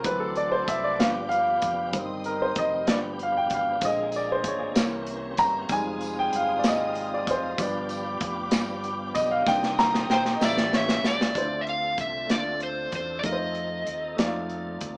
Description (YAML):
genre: slow gospel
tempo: 64 BPM (dotted quarters)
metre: 6/8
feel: straight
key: C minor, D minor from 11.4 s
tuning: A4 = 440 Hz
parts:
  - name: warm upright piano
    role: accompaniment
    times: 0.0-15.0 s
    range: C#3 to Bb5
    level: -29 LUFS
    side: equal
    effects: none
  - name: dark studio string section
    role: sustained chords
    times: 0.0-11.3 s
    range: Eb5 to E6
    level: -40 LUFS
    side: equal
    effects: none
  - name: tonewheel organ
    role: sustained chords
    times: 0.0-15.0 s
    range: C3 to A4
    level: -40 LUFS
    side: equal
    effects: slow rotary speaker, overdrive, chorus vibrato
  - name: fingered electric bass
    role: bass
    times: 0.0-15.0 s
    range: F1 to F2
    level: -42 LUFS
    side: equal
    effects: none
  - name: modern studio drum kit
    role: drums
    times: 0.0-15.0 s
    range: hi-hat, kick drum, snare drum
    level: -29 LUFS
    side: equal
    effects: none
  - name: tambourine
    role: percussion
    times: 3.8-11.3 s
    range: none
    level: -47 LUFS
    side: equal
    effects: none
  - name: overdriven slide guitar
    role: melody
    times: 10.1-14.2 s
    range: C5 to F5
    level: -30 LUFS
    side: equal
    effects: none
room: moderate small room reverb, RT60 0.6 s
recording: band playing live in one room, small speaker sound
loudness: -26 LUFS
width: mono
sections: 0.0-11.4 A section; 11.4-15.0 B section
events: upright piano solo 0.0-11.4; drum fill 9.5-11.4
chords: 0.1 D7; 1.0 G7; 1.9 Cm/G; 2.9 G7; 3.8 Bb7; 4.8 C7b9; 5.7 Fm7; 7.6 G7; 9.5 Cm7; 10.4 A7; 11.4 Dm7; 13.2 F7